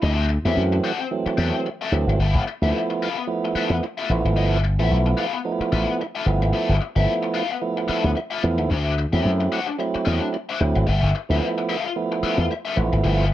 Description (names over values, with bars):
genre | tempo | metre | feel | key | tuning
funk | 111 BPM | 4/4 | swing 56% on 16ths | unclear | A4 = 440 Hz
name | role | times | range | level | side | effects
raw garage guitar | accompaniment | 0.0-13.3 s | B3 to F#5 | -26 LUFS | left 6 dB | wah, overdrive
tonewheel organ | stabs | 0.0-13.3 s | E3 to E4 | -25 LUFS | right 4 dB | overdrive, stopped rotary speaker
slap bass with an envelope filter | bass | 0.0-13.3 s | G1 to F#2 | -20 LUFS | equal | none
room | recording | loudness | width
little or no reverb | none | -20 LUFS | side -13 dB against mid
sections
0.0-13.3 A section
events
none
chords
0.0 D9; 2.2 G13; 8.7 D9; 10.9 G13